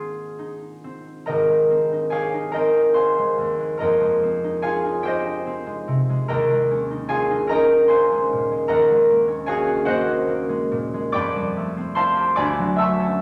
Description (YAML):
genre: classical, impressionist duo for clarinet and harp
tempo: 49 BPM (dotted quarters)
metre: 6/8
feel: uneven beats, rubato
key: Ab major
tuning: A4 = 441 Hz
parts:
  - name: mellow clarinet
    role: melody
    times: 0.0-0.8 s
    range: Ab4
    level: -36 LUFS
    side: equal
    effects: none
  - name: concert harp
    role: accompaniment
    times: 0.0-13.2 s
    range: Ab1 to E6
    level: -21 LUFS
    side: equal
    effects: none
room: wet recital hall reverb, RT60 1.7 s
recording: none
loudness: -21 LUFS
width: mono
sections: 0.0-1.3 A section; 1.3-13.2 B section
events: none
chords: 0.0 Ab69; 1.3 Abmaj9; 3.8 Fm9; 6.3 Eb9sus4; 8.7 Gbadd9/Eb; 11.2 Fmaj9; 12.4 Dmaj9